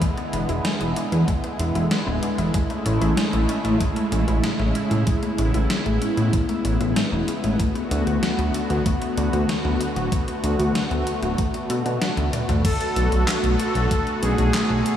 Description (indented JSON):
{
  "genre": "synthwave",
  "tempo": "95 BPM",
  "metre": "4/4",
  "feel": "straight",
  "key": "B dorian",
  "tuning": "A4 = 440 Hz",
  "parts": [
    { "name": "lush unison pad", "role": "sustained chords", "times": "0.0-15.0 s", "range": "C#3 to F#4", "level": "-24 LUFS", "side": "equal", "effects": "chorus, phaser, sidechain pumping" },
    { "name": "analog pluck", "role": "arpeggios", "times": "0.0-12.6 s", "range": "G#3 to D5", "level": "-30 LUFS", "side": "left 2 dB", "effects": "chorus, diffuse ambient delay" },
    { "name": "electronic kick drum", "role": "drums", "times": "0.0-14.0 s", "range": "none", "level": "-23 LUFS", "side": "equal", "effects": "overdrive" },
    { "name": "gated 80s digital drum machine", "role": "drums", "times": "0.0-15.0 s", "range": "crash cymbal, handclaps, hi-hat, snare drum, toms", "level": "-29 LUFS", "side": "equal", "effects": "gated reverb, gated reverb snare, overdrive" },
    { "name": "fat analog bass", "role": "bass", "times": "0.3-14.8 s", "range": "D1 to B2", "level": "-22 LUFS", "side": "equal", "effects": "none" },
    { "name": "soft supersaw", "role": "melody", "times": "12.6-15.0 s", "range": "G#4 to A4", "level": "-26 LUFS", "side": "left 1 dB", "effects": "tape echo" }
  ],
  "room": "moderate huge ambient reverb, RT60 8.6 s",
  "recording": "dreamy mix soaked in reverb, studio reverb",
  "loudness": "-20 LUFS",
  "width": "side -10 dB against mid",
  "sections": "0.0-12.6 A section; 12.6-15.0 B section",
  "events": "drum fill 12.2-12.6",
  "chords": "0.0 E7; 2.5 Amaj7; 7.6 D6; 12.6 Bm7"
}